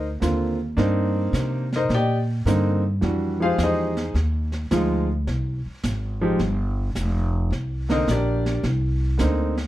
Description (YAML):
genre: jazz piano trio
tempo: 107 BPM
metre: 4/4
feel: swing 68% on 8ths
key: C minor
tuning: A4 = 437 Hz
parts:
  - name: warm concert grand piano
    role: melody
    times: 0.0-9.5 s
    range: D3 to G5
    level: -23 LUFS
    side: equal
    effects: none
  - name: upright bass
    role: bass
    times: 0.0-9.7 s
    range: F1 to C3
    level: -23 LUFS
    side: equal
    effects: none
  - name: jazz brush drum kit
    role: drums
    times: 0.2-9.7 s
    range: brushed snare drum, hi-hat, snare drum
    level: -31 LUFS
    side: right 2 dB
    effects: none
room: light reverb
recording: dark, warm production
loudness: -20 LUFS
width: side -14 dB against mid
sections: 0.0-9.7 A section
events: grand piano solo 0.0-9.7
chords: 0.0 Cm9; 3.0 Fm9; 7.5 Cm9